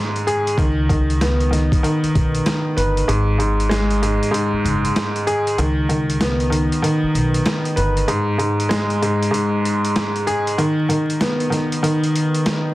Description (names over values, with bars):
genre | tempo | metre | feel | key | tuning
hip hop, boom-bap hip-hop | 96 BPM | 4/4 | swing 63% on 16ths | unclear | A4 = 435 Hz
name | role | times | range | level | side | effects
clear upright piano | accompaniment | 0.0-12.7 s | G#2 to B4 | -18 LUFS | equal | none
boom bap sampler-style drum kit | drums | 0.2-12.6 s | hi-hat, kick drum, rim click, snare drum | -23 LUFS | equal | overdrive, vintage 12-bit sampler grit
upright bass | bass | 0.6-8.0 s | F#1 to C#2 | -21 LUFS | equal | none
room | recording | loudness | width
studio ambience | dense, heavily limited modern master, vinyl crackle | -16 LUFS | side -17 dB against mid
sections
0.0-12.7 A section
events
kick muted 3.1-12.7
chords
0.0 N.C.; 0.6 C#sus2; 3.1 N.C.; 5.6 C#sus2; 8.1 N.C.; 10.6 B/D#